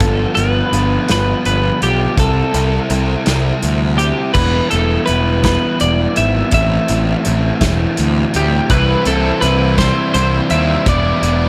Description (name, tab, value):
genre	indie rock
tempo	55 BPM (dotted quarters)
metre	6/8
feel	straight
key	unclear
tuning	A4 = 442 Hz
part	twelve-string electric guitar	melody	0.0-11.5 s	G4 to E5	-21 LUFS	equal	none
part	raw garage guitar	riff	0.0-11.5 s	G2 to G4	-21 LUFS	equal	overdrive
part	fuzz picked electric bass	bass	0.0-11.5 s	E1 to D#2	-19 LUFS	equal	overdrive
part	loose indie drum kit	drums	0.0-11.4 s	crash cymbal, hi-hat, kick drum, snare drum	-22 LUFS	equal	none
part	crunchy overdriven guitar	riff	8.7-11.5 s	E3 to E4	-24 LUFS	equal	ensemble chorus
room	studio reverb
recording	none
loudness	-15 LUFS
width	mono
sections	0.0-4.4 A section; 4.4-11.5 B section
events	none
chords	0.0 G7; 2.2 C6; 4.4 Em; 6.5 Am; 8.7 C; 10.9 Em7